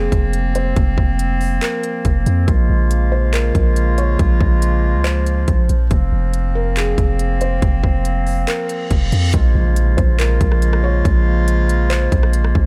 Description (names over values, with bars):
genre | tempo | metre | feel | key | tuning
hip hop, atmospheric cloud-rap | 140 BPM | 4/4 | half-time | Bb minor | A4 = 440 Hz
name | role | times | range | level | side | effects
felt-muted upright piano | melody | 0.0-12.7 s | Ab4 to Db5 | -28 LUFS | equal | tape echo
warm woodwind section | sustained chords | 0.0-12.7 s | Db3 to F4 | -25 LUFS | equal | sidechain pumping
long sustained 808-style bass | bass | 0.0-12.7 s | F1 to F2 | -18 LUFS | equal | none
trap drum kit | drums | 0.1-12.7 s | handclaps, hi-hat, kick drum, rim click | -21 LUFS | equal | none
reverse cymbal and impact | sound effects | 8.7-11.1 s | none | -31 LUFS | equal | none
room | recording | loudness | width
digital ambience | none | -16 LUFS | mono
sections
0.0-9.3 A section; 9.3-12.7 B section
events
reverse cymbal 8.7-9.3; impact 9.3-11.1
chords
0.0 Fsus4; 2.5 Bbm7; 5.9 Fsus4; 9.3 Bbm7